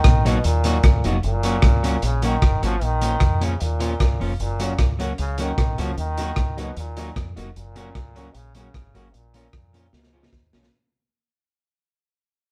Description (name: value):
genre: ska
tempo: 152 BPM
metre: 4/4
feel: straight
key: F# major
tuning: A4 = 440 Hz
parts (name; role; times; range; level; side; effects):
- bright trombone; melody; 0.0-10.5 s; G#2 to E#3; -30 LUFS; equal; none
- deep dub fingered electric bass; bass; 0.0-10.7 s; E#1 to E#2; -26 LUFS; equal; none
- crunchy breakbeat drum kit; drums; 0.0-10.7 s; hi-hat, kick drum, rim click, snare drum; -22 LUFS; equal; none
- electric guitar at the edge of break-up; accompaniment; 0.3-10.7 s; E#3 to F#4; -30 LUFS; equal; none
- honky-tonk upright piano; stabs; 4.6-10.6 s; C#4 to A#4; -40 LUFS; equal; none
room: light reverb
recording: band playing live in one room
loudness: -21 LUFS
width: mono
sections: 0.0-10.7 A section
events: fade-out 0.0-10.7; drum fill 9.9-10.7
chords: 0.0 D#m; 1.2 F#; 2.8 A#m; 4.4 F#; 6.0 D#m; 7.6 F#; 9.1 A#m; 9.9 C#